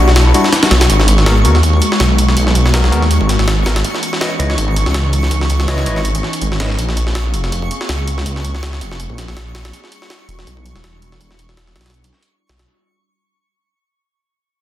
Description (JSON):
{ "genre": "drum and bass, jungle", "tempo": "163 BPM", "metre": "4/4", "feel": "swing 55% on 16ths", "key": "G# minor", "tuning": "A4 = 438 Hz", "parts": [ { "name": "warbly tape-like pad", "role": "sustained chords", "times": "0.0-12.6 s", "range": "E3 to G#4", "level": "-23 LUFS", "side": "left 1 dB", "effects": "chorus, built-in reverb" }, { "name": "overdriven tine electric piano", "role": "stabs", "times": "0.0-6.7 s", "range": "G3 to D#5", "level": "-21 LUFS", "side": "left 2 dB", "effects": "medium tremolo, dub echo" }, { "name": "detuned saw bass", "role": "bass", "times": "0.0-12.7 s", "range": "E1 to D#2", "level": "-14 LUFS", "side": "equal", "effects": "tube saturation" }, { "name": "twinkling granular texture", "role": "texture", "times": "0.0-12.7 s", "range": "C#6", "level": "-26 LUFS", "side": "right 2 dB", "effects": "built-in reverb" }, { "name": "jungle sampler-style drum kit", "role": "drums", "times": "0.1-12.7 s", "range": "hi-hat, kick drum, snare drum", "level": "-18 LUFS", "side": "equal", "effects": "high-pass filter on kick, high-pass filter on hats, high-pass filter on snare, high-pass filter on room" } ], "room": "light reverb", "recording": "dense, heavily limited modern master", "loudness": "-12 LUFS", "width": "side -13 dB against mid", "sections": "0.9-12.7 A section", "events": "fade-out 0.9-12.7; filter sweep on detuned saw bass 0.9-12.7", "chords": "0.0 Em9; 0.9 G#m9; 3.8 C#m9; 6.8 A#m9; 9.7 Em9" }